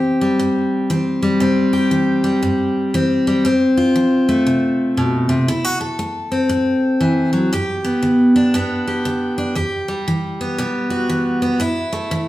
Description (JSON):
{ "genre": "country", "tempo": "118 BPM", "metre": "4/4", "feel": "swing 63% on 8ths", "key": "G major from 7.5 s", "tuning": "A4 = 440 Hz", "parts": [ { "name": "picked steel-string acoustic guitar", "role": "solo", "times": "0.0-12.3 s", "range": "E2 to A4", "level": "-15 LUFS", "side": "equal", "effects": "none" } ], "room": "wet large studio reverb, RT60 1.3 s", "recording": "band playing live in one room", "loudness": "-15 LUFS", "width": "side -15 dB against mid", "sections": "0.0-7.5 A section; 7.5-12.3 B section", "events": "none", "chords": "0.0 C; 3.4 F; 5.5 D7; 7.5 G; 9.6 Em; 11.6 A5" }